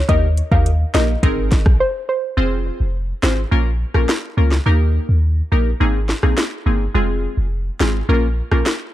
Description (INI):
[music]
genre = dancehall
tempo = 105 BPM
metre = 4/4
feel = straight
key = F minor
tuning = A4 = 440 Hz
[part]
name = clean 808-style bass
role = bass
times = 0.0-8.6 s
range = F1 to Eb2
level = -17 LUFS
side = equal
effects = none
[part]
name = soft round pluck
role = melody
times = 0.1-2.2 s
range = C5 to F5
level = -22 LUFS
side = left 1 dB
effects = chorus, digital delay
[part]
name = wavetable chord stab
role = accompaniment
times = 0.1-8.7 s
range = Ab3 to C5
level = -22 LUFS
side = equal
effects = none
[part]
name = afro-pop drum kit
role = drums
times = 0.1-8.8 s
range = hi-hat, kick drum, rim click, snare drum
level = -19 LUFS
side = equal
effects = none
[sound]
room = little or no reverb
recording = dark, warm production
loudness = -15 LUFS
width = side -14 dB against mid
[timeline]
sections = 0.0-2.4 A section; 2.4-8.9 B section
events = break 1.8-2.4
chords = 0.1 Eb; 1.2 Abadd9; 2.4 Fm; 3.5 Bbm; 4.7 Eb; 5.8 Abadd9; 6.9 Fm; 8.1 Bbm